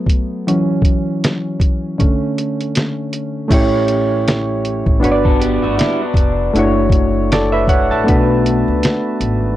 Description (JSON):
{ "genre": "lo-fi hip hop", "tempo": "79 BPM", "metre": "4/4", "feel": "swing 61% on 16ths", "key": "unclear", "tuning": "A4 = 441 Hz", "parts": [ { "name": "soft electric-piano-like synth keys", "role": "accompaniment", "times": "0.0-9.6 s", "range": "D3 to A5", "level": "-16 LUFS", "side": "equal", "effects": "chorus" }, { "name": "lo-fi sampler-style drum kit", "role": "drums", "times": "0.1-9.4 s", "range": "crash cymbal, hi-hat, kick drum, snare drum", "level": "-16 LUFS", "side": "equal", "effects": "none" }, { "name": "upright bass", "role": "bass", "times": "3.5-9.6 s", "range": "E#1 to C#2", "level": "-20 LUFS", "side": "equal", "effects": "transformer saturation" }, { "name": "electric guitar through a small old amp", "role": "second line", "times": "5.2-6.5 s", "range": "F#3 to A4", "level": "-23 LUFS", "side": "left 1 dB", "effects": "lush chorus, analog delay" } ], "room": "light reverb", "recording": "dry, gritty hardware recording, cassette tape", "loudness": "-13 LUFS", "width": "side -14 dB against mid", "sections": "0.0-3.5 A section; 3.5-9.6 B section", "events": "break 0.0-3.5; synth keys solo 0.0-3.5", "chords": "0.5 C#madd11/E; 2.0 Aadd11/D; 3.5 A7; 5.0 Gmaj7; 6.5 Dmaj9/F#; 8.1 Bm7", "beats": "| 0.47 1.23 1.99 2.75 | 3.51 4.26 5.02 5.78 | 6.54 7.30 8.06 8.82" }